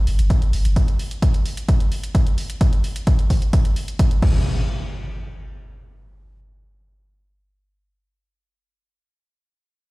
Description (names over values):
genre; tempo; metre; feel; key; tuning
driving peak-time techno; 130 BPM; 4/4; straight; unclear; A4 = 441 Hz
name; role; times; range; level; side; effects
saturated sub bass; bass; 0.0-0.8 s; G1; -19 LUFS; equal; overdrive, sidechain pumping, low-pass filter
punchy analog drum machine; drums; 0.1-4.3 s; crash cymbal, hi-hat; -35 LUFS; equal; sidechain pumping on hats, sidechain pumping on cymbals
electronic kick drum; drums; 0.3-4.3 s; none; -18 LUFS; equal; none
impact; sound effects; 4.2-7.9 s; none; -25 LUFS; equal; none
room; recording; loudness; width
little or no reverb; played on a big sound system in a bare room, stone room reverb; -17 LUFS; side -22 dB against mid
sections
0.0-4.5 A section; 4.5-8.1 B section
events
none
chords
none